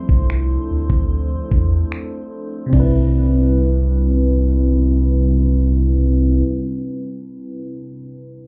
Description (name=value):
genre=contemporary R&B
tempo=74 BPM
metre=4/4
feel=straight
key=C major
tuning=A4 = 440 Hz
part: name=FM electric piano with soft pad layer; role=accompaniment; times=0.0-8.5 s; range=C3 to C6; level=-26 LUFS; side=equal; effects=chorus, low-pass filter
part: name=glass harmonica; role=sustained chords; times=0.0-6.4 s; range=G3 to C5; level=-26 LUFS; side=equal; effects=sidechain pumping, low-pass filter
part: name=warm sub bass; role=bass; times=0.1-6.4 s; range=C2 to E2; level=-18 LUFS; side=equal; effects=none
part: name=trap drum kit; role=drums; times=0.1-2.9 s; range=crash cymbal, finger snaps, kick drum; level=-19 LUFS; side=equal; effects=none
room=little or no reverb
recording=heard muffled through a wall, club ambience, EQ, lossy compression artefacts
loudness=-17 LUFS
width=mono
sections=0.0-2.7 A section; 2.7-6.0 B section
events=FM electric piano solo 0.0-2.7; filter sweep 0.0-2.7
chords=0.0 Dm7; 2.7 Cmaj7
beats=0.29 1.11 1.92 | 2.73 3.54 4.35 5.16